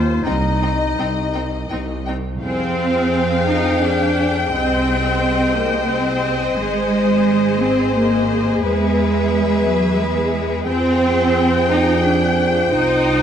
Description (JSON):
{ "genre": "cinematic", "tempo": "87 BPM", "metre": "3/4", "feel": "rubato", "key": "F dorian", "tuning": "A4 = 435 Hz", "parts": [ { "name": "clear symphonic violin section", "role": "second line", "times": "0.0-13.2 s", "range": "Ab4 to Eb5", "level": "-26 LUFS", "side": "left 5 dB", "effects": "none" }, { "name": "warm clarinet", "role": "second line", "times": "0.0-1.7 s", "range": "Eb4 to F4", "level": "-24 LUFS", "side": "left 2 dB", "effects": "none" }, { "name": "rich symphonic cello section", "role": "bass", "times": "0.0-13.2 s", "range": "C2 to Eb4", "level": "-19 LUFS", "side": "right 2 dB", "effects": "none" }, { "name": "rich symphonic double bass section", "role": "bass", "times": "0.0-13.2 s", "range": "Ab1 to F2", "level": "-23 LUFS", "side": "right 2 dB", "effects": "none" }, { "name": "rich studio violin section", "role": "melody", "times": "0.2-13.2 s", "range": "Eb5 to G5", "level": "-29 LUFS", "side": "left 2 dB", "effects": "none" }, { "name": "bright symphonic viola section", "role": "accompaniment", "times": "0.3-13.2 s", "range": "C4 to G5", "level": "-24 LUFS", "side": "left 2 dB", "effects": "none" }, { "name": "mellow French horn section", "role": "sustained chords", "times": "2.4-13.2 s", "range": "F4 to Eb5", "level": "-22 LUFS", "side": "left 2 dB", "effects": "none" } ], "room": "moderate scoring stage reverb, RT60 1.7 s", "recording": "dark, warm production", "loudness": "-15 LUFS", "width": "side -8 dB against mid", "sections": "0.0-2.4 A section; 2.4-13.2 B section", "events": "none", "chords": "0.3 Cm; 2.4 Fmadd9; 4.5 Cm; 6.6 Ab; 8.6 E; 10.7 Fmadd9; 12.7 Cm" }